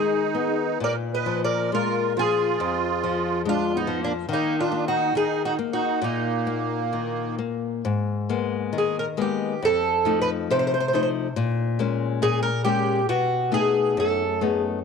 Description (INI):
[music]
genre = fado-style ballad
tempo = 64-71 BPM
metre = 2/4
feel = rubato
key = Eb harmonic minor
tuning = A4 = 440 Hz
[part]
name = fingerpicked twelve-string acoustic guitar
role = melody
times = 0.0-14.6 s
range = D4 to Eb5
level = -24 LUFS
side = equal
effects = none
[part]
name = musette accordion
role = second line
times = 0.0-7.4 s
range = Bb3 to Cb5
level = -28 LUFS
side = right 12 dB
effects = none
[part]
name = nylon-string guitar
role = accompaniment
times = 0.0-14.8 s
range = F2 to Eb4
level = -26 LUFS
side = left 6 dB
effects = none
[sound]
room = light reverb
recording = 1960s-style stereo with parts hard left and right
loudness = -21 LUFS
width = side -6 dB against mid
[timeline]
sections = 0.0-7.8 A section; 7.8-14.8 B section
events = none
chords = 0.0 Abm; 0.8 Bb5; 4.3 Eb5; 7.8 G#madd9; 9.6 F7; 11.3 A#m7; 13.1 B7